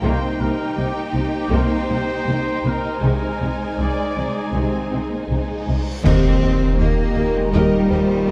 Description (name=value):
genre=cinematic, epic orchestral film score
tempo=80 BPM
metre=4/4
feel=straight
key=Eb major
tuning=A4 = 439 Hz
part: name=warm studio violin section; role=melody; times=0.0-8.3 s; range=Eb5 to Ab5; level=-35 LUFS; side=equal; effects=none
part: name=warm symphonic violin section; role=second line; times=0.0-8.3 s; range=Eb4 to C5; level=-31 LUFS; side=equal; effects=none
part: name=warm symphonic viola section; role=accompaniment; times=0.0-8.3 s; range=Ab3 to D5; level=-31 LUFS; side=equal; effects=none
part: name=bright trombone section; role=sustained chords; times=0.0-8.3 s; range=Bb2 to Eb3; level=-34 LUFS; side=equal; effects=none
part: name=rich symphonic string section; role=sustained chords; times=0.0-8.3 s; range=Ab3 to Eb5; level=-30 LUFS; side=equal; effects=none
part: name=warm French horn section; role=sustained chords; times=0.0-8.3 s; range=Ab3 to Bb4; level=-30 LUFS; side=equal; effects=none
part: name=warm trumpet section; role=stabs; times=0.0-5.3 s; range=G4 to C5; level=-31 LUFS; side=equal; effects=none
part: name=rich symphonic cello section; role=bass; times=0.0-8.3 s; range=C3 to C4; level=-26 LUFS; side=equal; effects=none
part: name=rich symphonic double bass section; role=bass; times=0.0-8.3 s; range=C2 to Eb2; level=-26 LUFS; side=equal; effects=none
part: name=cymbal swell, clash cymbals and concert bass drum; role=percussion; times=3.0-7.5 s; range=none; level=-25 LUFS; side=equal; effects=none
part: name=reverse cymbal and impact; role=sound effects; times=5.8-8.3 s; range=none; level=-32 LUFS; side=equal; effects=none
part: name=timpani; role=percussion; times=6.0-7.1 s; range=Eb3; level=-26 LUFS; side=equal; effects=none
room=moderate concert hall reverb, RT60 2.0 s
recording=dark, warm production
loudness=-20 LUFS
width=mono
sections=0.0-6.0 A section; 6.0-8.3 B section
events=reverse cymbal 5.8; band accent 6.0-6.8; impact 6.0-8.3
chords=0.0 Cm7; 3.0 Ab/C; 6.0 Eb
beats=| 0.04 0.77 1.53 2.28 | 3.03 3.79 4.54 5.29 | 6.04 6.79 7.53 8.27